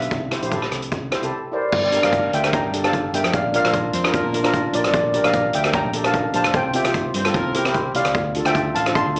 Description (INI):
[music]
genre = calypso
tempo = 149 BPM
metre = 4/4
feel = swing 53% on 16ths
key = unclear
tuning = A4 = 440 Hz
[part]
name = steel pan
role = melody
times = 0.0-9.2 s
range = Bb4 to C6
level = -21 LUFS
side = equal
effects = plate reverb, slapback echo
[part]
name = steel pan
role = accompaniment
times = 0.0-9.2 s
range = C4 to C5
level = -24 LUFS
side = equal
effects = plate reverb
[part]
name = hollow-body short-scale fingered electric bass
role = bass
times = 0.0-9.2 s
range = F1 to G2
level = -28 LUFS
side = equal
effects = none
[part]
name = street-band drum kit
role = drums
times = 0.0-9.2 s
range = crash cymbal, hi-hat, kick drum, rim click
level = -22 LUFS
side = equal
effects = none
[part]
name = mellow horn section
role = second line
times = 3.9-4.6, 7.1-7.8 s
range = Bb3 to C5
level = -27 LUFS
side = equal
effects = plate reverb, slapback echo
[sound]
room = wet club reverb, RT60 0.6 s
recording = live gig heard through the venue's PA, club reverb, small speaker sound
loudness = -17 LUFS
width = side -34 dB against mid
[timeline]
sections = 0.0-1.7 A section; 1.7-9.2 B section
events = none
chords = 0.1 C7; 1.7 Gm7; 3.3 Bb; 4.9 Gm7/Bb; 6.5 Csus4; 7.3 C; 8.2 Dm7